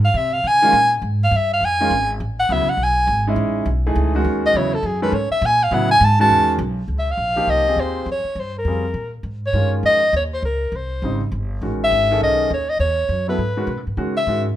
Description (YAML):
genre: modal jazz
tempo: 204 BPM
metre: 4/4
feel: swing 62% on 8ths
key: unclear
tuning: A4 = 440 Hz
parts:
  - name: breathy soprano saxophone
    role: melody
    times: 0.0-14.4 s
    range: G#4 to A5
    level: -17 LUFS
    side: equal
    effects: none
  - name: upright bass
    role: bass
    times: 0.0-14.6 s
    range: G1 to Db3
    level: -22 LUFS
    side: equal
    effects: none
  - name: clear concert grand piano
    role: accompaniment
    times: 0.6-14.4 s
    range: C#3 to A4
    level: -23 LUFS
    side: right 1 dB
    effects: none
room: light reverb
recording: minimal, uncompressed stereo recording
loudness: -16 LUFS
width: side -12 dB against mid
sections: 0.0-6.9 A section; 6.9-14.6 B section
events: soprano saxophone solo 0.0-6.9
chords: 0.0 Dbmaj7; 2.2 Amaj9; 6.9 Dbmaj9; 11.6 Amaj9